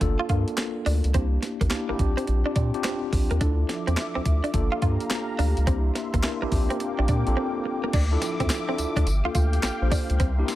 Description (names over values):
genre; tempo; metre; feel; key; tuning
R&B, new jack swing; 106 BPM; 4/4; swing 64% on 16ths; unclear; A4 = 440 Hz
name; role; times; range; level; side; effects
mellow tine electric piano; accompaniment; 0.0-10.6 s; Bb3 to C5; -29 LUFS; left 1 dB; medium stereo tremolo
direct-recorded clean electric guitar; riff; 0.0-10.5 s; Bb3 to F4; -31 LUFS; right 3 dB; wide subtle chorus
round analog bass; bass; 0.0-10.4 s; G1 to Bb2; -24 LUFS; equal; none
clean 12-bit digital drum machine; drums; 0.0-10.6 s; crash cymbal, handclaps, hi-hat, kick drum, snare drum, tambourine; -26 LUFS; equal; none
sweeping resonant pad; sustained chords; 3.6-10.6 s; F3 to D6; -33 LUFS; equal; chorus
room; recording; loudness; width
little or no reverb; none; -22 LUFS; side -15 dB against mid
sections
0.0-7.9 A section; 7.9-10.6 B section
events
break 7.4-7.9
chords
0.0 Gm7; 1.1 C7; 2.0 Bb6; 3.4 Dmadd9; 4.5 Gm7; 5.7 C7; 6.5 Bb6; 7.9 Dmadd9; 9.1 Gm7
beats
0.01 0.58 | 1.14 1.71 2.27 2.84 | 3.41 3.97 4.54 5.11 | 5.67 6.24 6.80 7.37 | 7.93 8.50 9.07 9.63 | 10.20